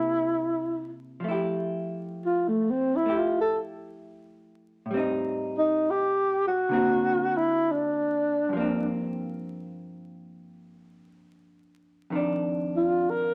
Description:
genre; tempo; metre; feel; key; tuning
jazz ballad; 66 BPM; 4/4; swing 67% on 8ths; F major; A4 = 440 Hz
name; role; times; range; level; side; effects
breathy alto saxophone; melody; 0.0-13.3 s; A3 to Bb4; -26 LUFS; equal; none
vintage hollow-body jazz guitar; accompaniment; 0.0-13.3 s; F2 to A4; -33 LUFS; equal; none
room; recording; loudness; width
wet studio reverb, RT60 0.9 s; vinyl crackle; -27 LUFS; mono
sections
0.0-1.2 A section; 1.2-13.3 B section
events
alto saxophone solo 1.2-13.3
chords
0.0 C6; 1.2 Fmaj9; 4.9 Am7b5; 6.7 D7b13; 8.5 Gm7; 12.1 F5

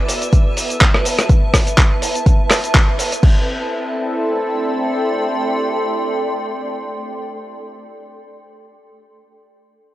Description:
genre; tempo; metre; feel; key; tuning
deep house; 124 BPM; 4/4; swing 55% on 16ths; A dorian; A4 = 440 Hz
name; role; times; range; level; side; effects
warm analog pad; sustained chords; 0.0-7.9 s; B3 to A5; -24 LUFS; equal; chorus, sidechain pumping
dark studio violin section; texture; 0.0-1.3 s; E6; -33 LUFS; left 1 dB; sidechain pumping
granular cloud pad; texture; 0.0-7.9 s; A4 to C6; -23 LUFS; equal; built-in reverb, sidechain pumping
dusty soul sampler-style drum kit; drums; 0.1-3.3 s; cabasa, crash cymbal, handclaps, hi-hat, rim click; -18 LUFS; equal; overdrive
electronic kick drum; drums; 0.3-3.3 s; none; -13 LUFS; equal; none
room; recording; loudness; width
light reverb; dry, gritty hardware recording, cassette tape; -14 LUFS; side -15 dB against mid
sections
0.0-3.2 A section; 3.2-7.1 B section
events
drop 0.0-3.2; band accent 2.7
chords
0.0 E9sus4; 3.2 Am

